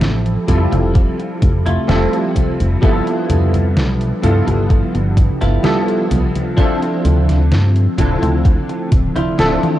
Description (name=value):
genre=vaporwave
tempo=64 BPM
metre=4/4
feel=straight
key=unclear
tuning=A4 = 440 Hz
part: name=bright electric grand piano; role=accompaniment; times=0.0-9.8 s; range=F3 to E5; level=-19 LUFS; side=equal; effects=ensemble chorus, analog delay
part: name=warbly tape-like pad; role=sustained chords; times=0.0-9.8 s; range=D3 to E5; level=-24 LUFS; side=equal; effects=chorus, built-in reverb
part: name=chorused synth bass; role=bass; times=0.0-9.6 s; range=D1 to G2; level=-16 LUFS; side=equal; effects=tube saturation
part: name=detuned 8-bit digital drum machine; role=drums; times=0.0-9.8 s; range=congas, hi-hat, snare drum, toms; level=-21 LUFS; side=equal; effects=small room ambience
part: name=electronic kick drum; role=drums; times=0.5-9.1 s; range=none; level=-14 LUFS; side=equal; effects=overdrive, small room ambience
part: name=clean electric guitar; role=riff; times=0.7-9.7 s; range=A3 to C5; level=-25 LUFS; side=right 1 dB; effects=wide subtle chorus, analog delay
room=digital ambience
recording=dark, warm production, cassette tape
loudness=-13 LUFS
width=side -13 dB against mid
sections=0.0-9.8 A section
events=drum fill 9.6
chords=0.0 Fmaj9; 2.8 G13; 6.6 Dm9